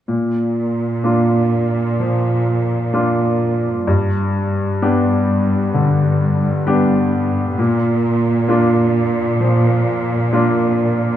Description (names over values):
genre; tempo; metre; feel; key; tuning
cinematic, emotional film score for orchestra; 65 BPM; 4/4; rubato; Bb major; A4 = 440 Hz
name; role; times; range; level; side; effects
clear grand piano; accompaniment; 0.1-11.2 s; G2 to G4; -16 LUFS; equal; none
rich symphonic cello section; bass; 0.1-11.2 s; G2 to Bb2; -20 LUFS; equal; none
room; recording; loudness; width
wet recital hall reverb, RT60 1.7 s; none; -14 LUFS; side -11 dB against mid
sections
0.1-11.2 A section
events
none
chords
0.1 Bb; 3.9 G; 7.6 Bb